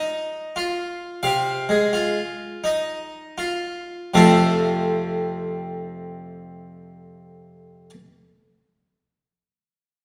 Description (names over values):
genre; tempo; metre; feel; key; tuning
classical, baroque-style suite movement for harpsichord; 39-46 BPM; 4/4; rubato; unclear; A4 = 440 Hz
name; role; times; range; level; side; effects
harpsichord; solo; 0.0-7.9 s; F2 to F5; -23 LUFS; equal; none
room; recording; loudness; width
wet recital hall reverb, RT60 1.6 s; heard from further back in the room; -22 LUFS; mono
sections
0.0-4.1 A section; 4.1-10.0 B section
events
slowing down 0.0-4.1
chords
0.0 Fm; 4.1 F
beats
1.21 2.63 | 4.13 5.66 7.19